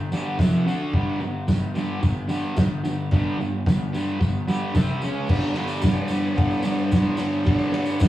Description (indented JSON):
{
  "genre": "garage rock duo or trio",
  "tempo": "110 BPM",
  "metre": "4/4",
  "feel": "straight",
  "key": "unclear",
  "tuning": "A4 = 440 Hz",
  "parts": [
    { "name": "fuzz guitar", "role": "riff", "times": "0.0-8.1 s", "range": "F2 to D4", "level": "-23 LUFS", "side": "equal", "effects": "distortion" },
    { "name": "tambourine", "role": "percussion", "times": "0.1-8.1 s", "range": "none", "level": "-45 LUFS", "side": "right 1 dB", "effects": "none" },
    { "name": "cloth-damped thuddy drum kit", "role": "drums", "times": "0.4-8.1 s", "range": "crash cymbal, kick drum, ride cymbal, snare drum", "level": "-23 LUFS", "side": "equal", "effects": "none" }
  ],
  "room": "wet booth ambience, RT60 0.2 s",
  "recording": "rough rehearsal-room recording, tube saturation, small room ambience",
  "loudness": "-20 LUFS",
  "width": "side -14 dB against mid",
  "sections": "0.0-5.3 A section; 5.3-8.1 B section",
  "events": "none",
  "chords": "0.4 F5; 0.7 D5; 0.9 G5; 4.7 C5; 5.0 C#5; 5.3 G5"
}